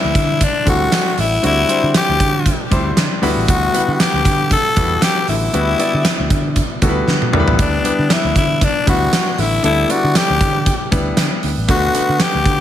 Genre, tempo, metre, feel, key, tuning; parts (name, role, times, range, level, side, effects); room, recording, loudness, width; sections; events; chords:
1980s-style pop; 117 BPM; 4/4; swing 55% on 16ths; A4 = 441 Hz
raspy tenor saxophone; melody; 0.0-12.6 s; D4 to A4; -18 LUFS; left 3 dB; digital delay
clear baby grand piano; accompaniment; 0.0-12.6 s; D3 to F#5; -21 LUFS; left 1 dB
fingered electric bass; bass; 0.0-12.6 s; A1 to D3; -20 LUFS; right 1 dB
gated 80s drum kit; drums; 0.2-12.6 s; hi-hat, kick drum, snare drum, tambourine, toms; -17 LUFS; right 1 dB; gated reverb
light reverb, small room reverb; -13 LUFS; side -11 dB against mid
0.0-12.6 A section
drum fill 7.1-7.6
0.0 Cadd9; 3.2 Emadd9; 7.3 G6; 11.7 D6